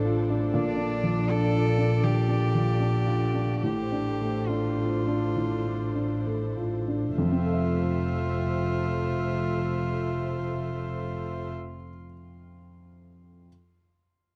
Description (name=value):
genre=neoclassical piano and strings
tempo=64-85 BPM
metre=4/4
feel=rubato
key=F major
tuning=A4 = 440 Hz
part: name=warm upright piano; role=accompaniment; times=0.0-13.5 s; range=F2 to E5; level=-31 LUFS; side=equal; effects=none
part: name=warm chamber string section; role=sustained chords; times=0.0-11.5 s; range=D4 to E5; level=-38 LUFS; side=equal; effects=none
part: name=dark double bass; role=bass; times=0.0-11.5 s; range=F1 to Bb1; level=-31 LUFS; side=equal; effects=none
part: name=rich cello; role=second line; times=0.5-11.5 s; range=D4 to A4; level=-35 LUFS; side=equal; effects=tape echo
room=little or no reverb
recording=dry, close 1970s-style studio recording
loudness=-27 LUFS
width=mono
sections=0.0-7.2 A section; 7.2-10.8 B section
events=slowing down 0.0-7.2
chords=0.0 Dm7/A; 0.5 Bbmaj7; 3.6 F6/A; 7.2 Fmaj7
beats=| 0.54 1.29 2.04 2.81 | 3.62 4.47 5.35 6.24 | 7.16 8.06 8.95 9.85